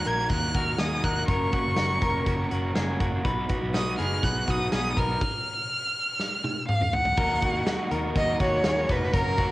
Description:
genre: jangly indie pop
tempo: 122 BPM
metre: 4/4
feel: straight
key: unclear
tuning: A4 = 439 Hz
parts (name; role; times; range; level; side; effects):
- rich violin; melody; 0.0-9.5 s; A#4 to G#6; -28 LUFS; equal; none
- crunchy overdriven guitar; accompaniment; 0.0-9.5 s; F#2 to B4; -31 LUFS; right 2 dB; harmonic tremolo, cassette tape
- clean electric guitar; arpeggios; 0.0-9.5 s; F#4 to B4; -32 LUFS; left 3 dB; cassette tape
- big rock drum kit; drums; 0.0-9.5 s; crash cymbal, hi-hat, kick drum, snare drum, toms; -29 LUFS; equal; cassette tape
- vintage muted picked electric bass; bass; 0.1-9.5 s; E#1 to D#2; -30 LUFS; equal; none
- dark studio string section; sustained chords; 7.2-9.5 s; D#3 to A#4; -38 LUFS; equal; none
room: moderate spring reverb, RT60 1.9 s, studio reverb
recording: home recording on cassette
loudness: -23 LUFS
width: side -18 dB against mid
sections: 0.0-7.2 A section; 7.2-9.5 B section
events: drum fill 6.2-7.2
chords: 0.0 D#m; 1.3 F#; 3.2 B; 5.2 N.C.; 7.2 D#m

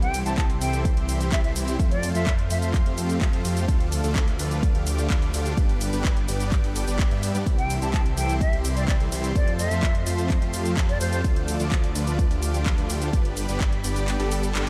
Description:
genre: EDM, festival progressive house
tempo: 127 BPM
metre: 4/4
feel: straight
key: C major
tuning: A4 = 440 Hz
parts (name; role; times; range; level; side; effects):
- bright concert flute; melody; 0.0-2.7, 7.6-11.2 s; C5 to A5; -34 LUFS; equal; delay
- lush unison pad; sustained chords; 0.0-14.7 s; F4 to D6; -38 LUFS; equal; chorus, sidechain pumping
- supersaw chords; riff; 0.0-14.7 s; E3 to E5; -33 LUFS; equal; sidechain pumping, delay
- detuned saw bass; bass; 0.0-14.7 s; G1 to G2; -29 LUFS; equal; sidechain pumping
- house drum kit; drums; 0.0-14.7 s; handclaps, hi-hat, ride cymbal, shaker; -35 LUFS; equal; overdrive
- electronic kick drum; drums; 0.4-13.7 s; none; -25 LUFS; equal; overdrive
room: light reverb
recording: none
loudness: -24 LUFS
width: mono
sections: 0.0-14.7 A section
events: kick drops out 14.1-14.7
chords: 0.0 C; 1.8 F; 3.7 Dm; 5.6 G; 7.5 C; 9.4 F; 11.2 Dm; 13.1 G

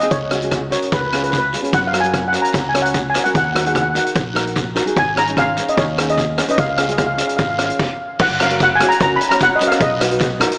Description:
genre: calypso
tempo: 148 BPM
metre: 4/4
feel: straight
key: F# major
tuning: A4 = 440 Hz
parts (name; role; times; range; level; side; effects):
- steel pan; melody; 0.0-10.6 s; B4 to B5; -17 LUFS; equal; tape echo
- nylon-string guitar; accompaniment; 0.0-10.5 s; B#3 to C#5; -22 LUFS; equal; none
- street-band drum kit; drums; 0.0-10.6 s; crash cymbal, hi-hat, kick drum, rim click; -19 LUFS; equal; none
- fingered electric bass; bass; 0.1-10.4 s; F#1 to F#2; -27 LUFS; equal; none
- guiro; percussion; 0.1-10.3 s; none; -30 LUFS; left 1 dB; none
room: moderate scoring stage reverb, RT60 1.8 s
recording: small speaker sound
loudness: -14 LUFS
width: side -30 dB against mid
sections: 0.0-8.2 A section; 8.2-10.6 B section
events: stop 7.8-8.2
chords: 0.1 C#sus4; 0.9 C#; 1.7 F#; 3.3 D#m; 5.0 G#sus4; 6.6 C#; 8.2 F#; 9.8 Bmaj7

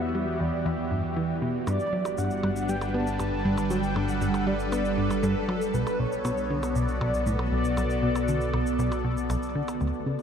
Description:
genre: ambient, sequencer-driven space music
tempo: 118 BPM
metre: 4/4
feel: straight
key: unclear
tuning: A4 = 440 Hz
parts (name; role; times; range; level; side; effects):
- mellow horn-like synth lead; melody; 0.0-9.3 s; A4 to A5; -32 LUFS; equal; ensemble chorus, tape echo
- phased analog pad; sustained chords; 0.0-10.2 s; D3 to D5; -29 LUFS; right 1 dB; phaser, chorus
- analog drone; bass; 0.0-9.8 s; G1 to E2; -33 LUFS; equal; chorus
- plucky analog bass; riff; 0.1-10.2 s; B1 to B3; -29 LUFS; equal; tape echo
- shaker and percussion blips; percussion; 1.7-10.2 s; none; -41 LUFS; right 1 dB; tape echo
room: wet huge ambient reverb, RT60 7.3 s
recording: dark, warm production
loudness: -24 LUFS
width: side -7 dB against mid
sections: 0.0-9.8 A section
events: none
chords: 0.0 Em; 1.7 Gmaj7; 5.7 Bm7

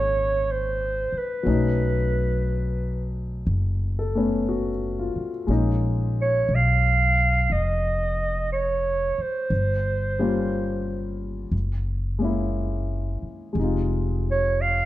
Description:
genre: jazz ballad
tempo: 60 BPM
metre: 4/4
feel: swing 68% on 8ths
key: unclear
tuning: A4 = 439 Hz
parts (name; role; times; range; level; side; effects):
- breathy clarinet; melody; 0.0-14.9 s; Cb5 to F5; -24 LUFS; right 3 dB; none
- warm grand piano; accompaniment; 0.0-14.9 s; Bb2 to A4; -27 LUFS; left 3 dB; none
- upright bass; bass; 0.0-14.9 s; F1 to Cb2; -25 LUFS; equal; none
room: light reverb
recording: dark, warm production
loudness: -22 LUFS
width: side -15 dB against mid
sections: 0.0-14.9 A section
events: none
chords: 0.0 Dbadd9; 1.5 Cb9; 5.5 Bbm7; 9.5 Gm7b5; 11.5 Gb9; 13.6 Fm7

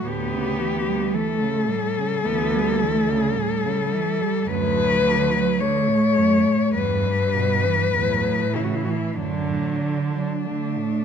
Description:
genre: classical, lyrical piece for cello ensemble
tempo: 46-55 BPM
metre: 4/4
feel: rubato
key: D major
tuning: A4 = 440 Hz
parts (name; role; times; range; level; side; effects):
- dark cello; melody; 0.0-11.0 s; D4 to C#5; -23 LUFS; left 6 dB; none
- warm cello; second line; 0.0-11.0 s; E2 to G3; -27 LUFS; right 11 dB; none
- warm cello; accompaniment; 0.0-11.0 s; E3 to B3; -25 LUFS; equal; none
- warm cello; bass; 0.1-10.2 s; D2 to D3; -27 LUFS; right 2 dB; none
room: moderate scoring stage reverb, RT60 1.8 s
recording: close, detailed microphones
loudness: -19 LUFS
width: side -7 dB against mid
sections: 0.0-11.0 A section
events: none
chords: 0.1 A7/D; 4.5 D; 6.7 Em; 7.9 A/E; 9.2 D/F#

